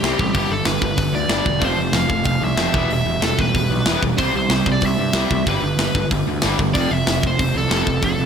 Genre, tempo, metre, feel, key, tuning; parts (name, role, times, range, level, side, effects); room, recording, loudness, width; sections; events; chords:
punk rock; 188 BPM; 4/4; straight; G mixolydian; A4 = 439 Hz
biting overdriven guitar; melody; 0.0-8.3 s; G4 to F5; -23 LUFS; equal; slapback echo, digital delay
distorted electric guitar; riff; 0.0-8.3 s; F2 to C4; -25 LUFS; left 10 dB; overdrive, slapback echo
sludgy distorted guitar; riff; 0.0-8.3 s; E2 to C4; -23 LUFS; right 9 dB; overdrive
fuzz picked electric bass; bass; 0.0-8.3 s; E1 to G2; -24 LUFS; equal; overdrive
tight metal drum kit; drums; 0.0-8.1 s; hi-hat, kick drum, snare drum; -22 LUFS; equal
moderate lush hall reverb, RT60 1.7 s, small room ambience; big arena sound; -16 LUFS; side -7 dB against mid
0.0-8.3 A section
0.4 G; 1.6 F; 2.7 Em; 4.2 C; 5.5 G; 6.7 F